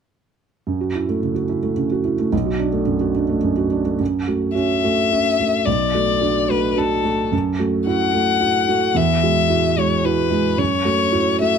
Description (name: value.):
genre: neoclassical piano and strings.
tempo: 109 BPM.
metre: 3/4.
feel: rubato.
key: F# minor.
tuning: A4 = 443 Hz.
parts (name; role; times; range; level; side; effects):
felt-muted upright piano; accompaniment; 0.7-11.6 s; B1 to F#4; -18 LUFS; right 3 dB; none.
rich violin; melody; 4.6-11.6 s; A4 to F#5; -19 LUFS; left 8 dB; none.
room: light reverb.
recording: close, detailed microphones.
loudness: -17 LUFS.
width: side -7 dB against mid.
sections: 0.7-4.0 A section; 4.0-11.6 B section.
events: none.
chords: 0.7 F#m7; 2.3 Bm7; 4.0 F#m7; 5.7 Bm7; 7.3 F#m7; 9.0 Eadd9; 10.6 F#m7.